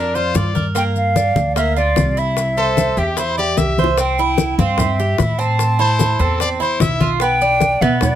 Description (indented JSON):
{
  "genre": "latin, Cuban son and guajira",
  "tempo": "149 BPM",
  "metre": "4/4",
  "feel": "straight",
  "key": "unclear",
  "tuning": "A4 = 439 Hz",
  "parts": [
    { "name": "brilliant trumpet", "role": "second line", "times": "0.0-7.1 s", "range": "G4 to E5", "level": "-21 LUFS", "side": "left 5 dB", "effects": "none" },
    { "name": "Cuban tres", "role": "arpeggios", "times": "0.0-8.2 s", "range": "Bb3 to C5", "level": "-20 LUFS", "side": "right 5 dB", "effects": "none" },
    { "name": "upright bass", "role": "bass", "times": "0.0-8.2 s", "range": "B1 to B2", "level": "-20 LUFS", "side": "equal", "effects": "none" },
    { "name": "congas", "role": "percussion", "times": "0.2-8.2 s", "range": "none", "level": "-21 LUFS", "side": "left 2 dB", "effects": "none" },
    { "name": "maracas", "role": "percussion", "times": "0.2-8.2 s", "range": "none", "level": "-33 LUFS", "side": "left 8 dB", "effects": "none" },
    { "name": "bongos", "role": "percussion", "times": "0.4-8.2 s", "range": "none", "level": "-25 LUFS", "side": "left 9 dB", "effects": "none" },
    { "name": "hollow concert flute", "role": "melody", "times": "0.8-8.2 s", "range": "D5 to A5", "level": "-19 LUFS", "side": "equal", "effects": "none" }
  ],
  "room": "light reverb",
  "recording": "close, detailed microphones",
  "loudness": "-14 LUFS",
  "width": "side -11 dB against mid",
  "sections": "0.0-4.0 A section; 4.0-8.2 B section",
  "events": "drum fill 3.6-4.0",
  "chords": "0.0 Bb; 0.8 Gm7; 2.4 C; 5.6 Am; 7.2 G/B",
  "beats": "0.36 | 0.76 1.16 1.57 1.97 | 2.37 2.78 3.18 3.58 | 3.99 4.39 4.79 5.20 | 5.60 6.00 6.40 6.81 | 7.21 7.61 8.01"
}